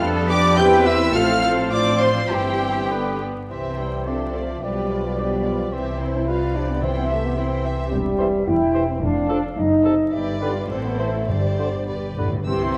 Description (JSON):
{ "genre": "quick classical-period movement for symphony orchestra", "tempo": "99-110 BPM", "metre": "2/4", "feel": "rubato", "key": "C major", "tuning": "A4 = 441 Hz", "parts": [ { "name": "mellow cor anglais", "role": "second line", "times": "0.0-12.8 s", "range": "A4 to G5", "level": "-34 LUFS", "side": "equal", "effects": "none" }, { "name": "dark bassoon", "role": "accompaniment", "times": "0.0-12.8 s", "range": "C3 to G3", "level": "-33 LUFS", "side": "equal", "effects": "none" }, { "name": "rich chamber viola section", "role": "accompaniment", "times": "0.0-12.8 s", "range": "B3 to C5", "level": "-34 LUFS", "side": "equal", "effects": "none" }, { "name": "rich chamber double bass section", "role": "bass", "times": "0.0-12.8 s", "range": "E1 to F2", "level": "-29 LUFS", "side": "equal", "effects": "none" }, { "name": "rich symphonic cello section", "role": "bass", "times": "0.0-12.8 s", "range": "E2 to B4", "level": "-31 LUFS", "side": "equal", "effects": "none" }, { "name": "rich chamber violin section", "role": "melody", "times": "0.3-12.8 s", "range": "B4 to G6", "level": "-33 LUFS", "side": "equal", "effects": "none" }, { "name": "mellow large flute ensemble", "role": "second line", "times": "0.3-12.8 s", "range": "G4 to C6", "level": "-32 LUFS", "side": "equal", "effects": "none" }, { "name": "rich chamber violin section", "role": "second line", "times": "0.3-12.8 s", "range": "E4 to G5", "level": "-33 LUFS", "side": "equal", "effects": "none" }, { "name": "warm French horn section", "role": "sustained chords", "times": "0.3-12.6 s", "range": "F3 to G4", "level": "-26 LUFS", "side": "equal", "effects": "none" }, { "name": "mellow trumpet section", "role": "stabs", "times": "0.3-3.2 s", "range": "G4 to G5", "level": "-27 LUFS", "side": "equal", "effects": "none" }, { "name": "timpani", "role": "percussion", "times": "6.8-7.6, 11.3-12.8 s", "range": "G2 to C3", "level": "-28 LUFS", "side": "equal", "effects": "none" } ], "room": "wet scoring stage reverb, RT60 1.5 s", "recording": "vinyl crackle", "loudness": "-21 LUFS", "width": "mono", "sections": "0.0-3.5 A section; 3.5-12.5 B section", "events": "timpani fill 11.9-12.5", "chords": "0.0 G7/F; 0.6 C/E; 1.1 F/A; 2.3 C/G; 2.9 G; 3.5 C; 4.1 Dm7/C; 4.6 G7/B; 5.7 C; 6.3 G7/C; 6.8 C; 7.9 C/E; 9.0 Dm/F; 9.6 F#dim7; 10.1 G; 10.7 Am; 11.3 Gsus4; 11.9 G" }